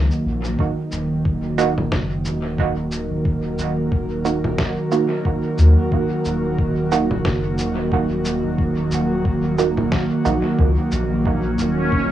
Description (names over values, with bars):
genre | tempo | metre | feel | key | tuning
ambient dub | 90 BPM | 4/4 | swing 57% on 16ths | Eb minor | A4 = 439 Hz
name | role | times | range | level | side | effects
airy breathy pad | sustained chords | 0.0-12.1 s | Eb3 to Db5 | -21 LUFS | equal | chorus, cassette tape
soft dub sub bass | bass | 0.0-12.1 s | Eb1 to Eb2 | -22 LUFS | equal | none
electronic cabasa, congas and snare drum | drums | 0.1-11.7 s | none | -27 LUFS | equal | dub echo
electronic kick drum | drums | 0.6-12.1 s | none | -22 LUFS | left 1 dB | none
filtered dub chord stab | stabs | 1.6-10.4 s | Bb3 to Gb4 | -23 LUFS | right 8 dB | chorus, cassette tape, dub echo
backwards swelling texture | texture | 11.2-12.1 s | Db4 to Db5 | -24 LUFS | equal | built-in reverb, cassette tape
room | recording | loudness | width
light reverb | home recording on cassette | -18 LUFS | side -12 dB against mid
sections
0.6-12.1 A section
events
break 0.0-0.6; band accent 0.0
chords
0.0 Ebm